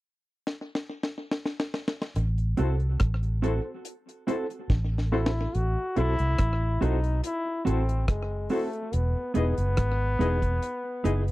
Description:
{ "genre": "roots reggae", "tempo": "71 BPM", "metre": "4/4", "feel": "straight", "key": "unclear", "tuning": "A4 = 441 Hz", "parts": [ { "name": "deep reggae drum kit", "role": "drums", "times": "0.5-11.3 s", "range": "hi-hat, kick drum, rim click, snare drum", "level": "-29 LUFS", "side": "equal", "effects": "slapback echo" }, { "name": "vintage muted fingered electric bass", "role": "bass", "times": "2.2-11.3 s", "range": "E1 to C2", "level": "-26 LUFS", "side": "equal", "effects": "none" }, { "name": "mellow electric guitar", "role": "accompaniment", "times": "2.6-11.2 s", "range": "B3 to A4", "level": "-32 LUFS", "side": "right 3 dB", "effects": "spring reverb, tape echo" }, { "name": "barky reed electric piano", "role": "stabs", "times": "2.6-11.2 s", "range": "E4 to D#5", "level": "-32 LUFS", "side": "left 6 dB", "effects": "overdrive, tremolo" }, { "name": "clear trombone", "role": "melody", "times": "5.1-11.3 s", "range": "G#3 to F#4", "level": "-31 LUFS", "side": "left 2 dB", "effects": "tape echo" } ], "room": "little or no reverb", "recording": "dry, close 1970s-style studio recording", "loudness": "-25 LUFS", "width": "side -18 dB against mid", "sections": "0.0-2.2 A section; 2.2-5.5 B section; 5.5-11.3 C section", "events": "drum fill 0.5-2.2, 4.7-5.5", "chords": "0.0 N.C.; 2.2 Am6; 8.9 Emaj7" }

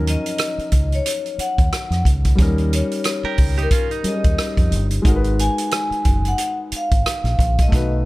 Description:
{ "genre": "lush 1970s-style soul", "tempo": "90 BPM", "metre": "4/4", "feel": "swing 58% on 16ths", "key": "Eb minor", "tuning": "A4 = 440 Hz", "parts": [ { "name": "warm concert grand piano", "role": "accompaniment", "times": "0.0-8.1 s", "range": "Gb3 to Cb5", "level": "-26 LUFS", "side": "left 2 dB", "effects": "none" }, { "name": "deep dub fingered electric bass", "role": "bass", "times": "0.0-8.1 s", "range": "Gb1 to F2", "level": "-20 LUFS", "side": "equal", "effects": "none" }, { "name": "vibraphone with medium hard mallets", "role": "melody", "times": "0.1-7.9 s", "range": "Bb4 to Ab5", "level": "-25 LUFS", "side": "left 2 dB", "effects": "none" }, { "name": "vintage drum kit", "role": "drums", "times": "0.1-7.9 s", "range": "hi-hat, kick drum, rim click", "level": "-19 LUFS", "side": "equal", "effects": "none" }, { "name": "direct-recorded clean electric guitar", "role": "riff", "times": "3.2-4.9 s", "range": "Db4 to Bb4", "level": "-28 LUFS", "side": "right 7 dB", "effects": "tube saturation" } ], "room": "small room ambience", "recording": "none", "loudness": "-16 LUFS", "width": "side -19 dB against mid", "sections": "0.0-8.1 A section", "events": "none", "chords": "0.0 Ebm7; 2.4 Eb7; 5.1 Abm7" }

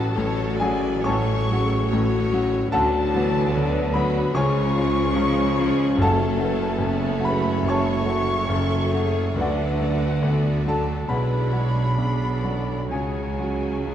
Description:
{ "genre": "classical, romantic movement for piano and orchestra", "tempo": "62-75 BPM", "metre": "4/4", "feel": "rubato", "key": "F# minor", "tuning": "A4 = 440 Hz", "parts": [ { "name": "clear concert grand piano", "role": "melody", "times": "0.0-13.9 s", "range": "F#1 to C#6", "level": "-24 LUFS", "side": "left 2 dB", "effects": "none" }, { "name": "dark studio violin section", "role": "melody", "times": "0.0-13.9 s", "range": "F#5 to C#6", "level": "-37 LUFS", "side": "left 1 dB", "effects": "none" }, { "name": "concert flute", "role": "second line", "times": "0.0-13.9 s", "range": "F#5 to C#6", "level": "-33 LUFS", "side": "left 2 dB", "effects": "none" }, { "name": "rich studio violin section", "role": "second line", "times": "0.0-13.9 s", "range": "G#4 to D5", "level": "-36 LUFS", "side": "left 3 dB", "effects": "none" }, { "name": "rich studio viola section", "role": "accompaniment", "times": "0.0-13.9 s", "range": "E3 to A4", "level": "-32 LUFS", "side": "right 1 dB", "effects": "none" }, { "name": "dark French horn section", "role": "sustained chords", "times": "0.0-13.9 s", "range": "E#4 to B4", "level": "-30 LUFS", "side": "left 5 dB", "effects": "none" }, { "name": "dark studio double bass section", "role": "bass", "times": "0.0-13.9 s", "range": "F#1 to D2", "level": "-29 LUFS", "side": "right 3 dB", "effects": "none" }, { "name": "rich studio cello section", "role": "bass", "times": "0.0-13.9 s", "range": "F#2 to D3", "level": "-30 LUFS", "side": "right 3 dB", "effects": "none" }, { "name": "warm tuba", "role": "bass", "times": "0.0-13.9 s", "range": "F#1 to D2", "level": "-30 LUFS", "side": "right 4 dB", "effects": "none" }, { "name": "mellow clarinet", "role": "second line", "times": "1.1-13.9 s", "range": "B3 to D4", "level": "-34 LUFS", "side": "left 2 dB", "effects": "none" }, { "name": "mellow bassoon", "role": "accompaniment", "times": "1.1-13.9 s", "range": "E#3 to A3", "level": "-34 LUFS", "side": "right 2 dB", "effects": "none" }, { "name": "timpani", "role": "percussion", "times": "4.3-7.2 s", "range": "F#2 to C#3", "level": "-30 LUFS", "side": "left 1 dB", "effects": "none" } ], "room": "wet scoring stage reverb, RT60 1.6 s", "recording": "dark, warm production", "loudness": "-20 LUFS", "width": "side -10 dB against mid", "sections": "0.0-13.9 A section", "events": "none", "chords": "0.0 F#m/A; 2.7 Bm/D; 4.4 C#; 6.0 F#m; 9.4 D; 11.1 Bm; 12.9 C#sus4" }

